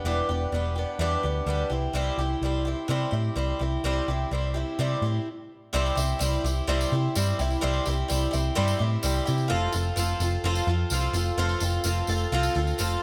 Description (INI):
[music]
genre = folk rock and heartland rock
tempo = 127 BPM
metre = 4/4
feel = straight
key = unclear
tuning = A4 = 440 Hz
[part]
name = picked twelve-string acoustic guitar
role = accompaniment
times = 0.0-13.0 s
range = C3 to A4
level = -30 LUFS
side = equal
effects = none
[part]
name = hollow-body short-scale picked electric bass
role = bass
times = 0.0-13.0 s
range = E1 to C3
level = -29 LUFS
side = equal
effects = none
[part]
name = tambourine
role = percussion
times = 5.9-13.0 s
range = none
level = -38 LUFS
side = equal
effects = none
[sound]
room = light reverb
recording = none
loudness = -26 LUFS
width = mono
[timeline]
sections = 0.0-5.7 A section; 5.7-13.0 B section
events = stop 5.3-5.7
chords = 0.0 Em7; 1.7 C; 9.5 F